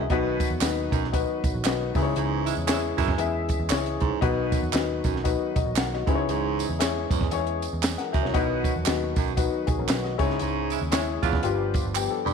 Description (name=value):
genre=uptempo 1960s-style soul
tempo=116 BPM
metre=4/4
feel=swing 59% on 8ths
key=B major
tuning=A4 = 440 Hz
part: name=dark upright piano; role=accompaniment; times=0.0-12.3 s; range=G2 to B5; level=-28 LUFS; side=left 10 dB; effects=tube saturation
part: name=tonewheel organ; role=sustained chords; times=0.0-12.3 s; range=D#3 to G#4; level=-34 LUFS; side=right 2 dB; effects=slow rotary speaker, overdrive, chorus vibrato
part: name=warm baritone saxophone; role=riff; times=0.0-12.3 s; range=E2 to B2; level=-32 LUFS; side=right 14 dB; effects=none
part: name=vintage muted picked electric bass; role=bass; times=0.0-12.3 s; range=E1 to F#2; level=-31 LUFS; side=right 2 dB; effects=none
part: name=compact cocktail drum kit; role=drums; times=0.1-11.8 s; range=hi-hat, kick drum, snare drum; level=-27 LUFS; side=right 1 dB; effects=none
part: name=tambourine and handclaps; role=percussion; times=0.4-12.3 s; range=none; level=-35 LUFS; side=right 14 dB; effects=none
part: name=dark saxophone section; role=second line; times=2.5-3.3, 10.7-11.6 s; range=G#3 to E#4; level=-32 LUFS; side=right 12 dB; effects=none
room=moderate echo chamber reverb, RT60 1.7 s, small room reverb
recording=1960s-style stereo with parts hard left and right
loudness=-23 LUFS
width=side -6 dB against mid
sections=0.0-12.3 A section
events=band accent 2.2-4.2, 10.4-12.3; upright piano fill 11.7-12.3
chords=0.1 B; 1.9 C#m; 4.2 B; 6.0 C#m; 8.3 B; 10.1 C#m; 11.4 G7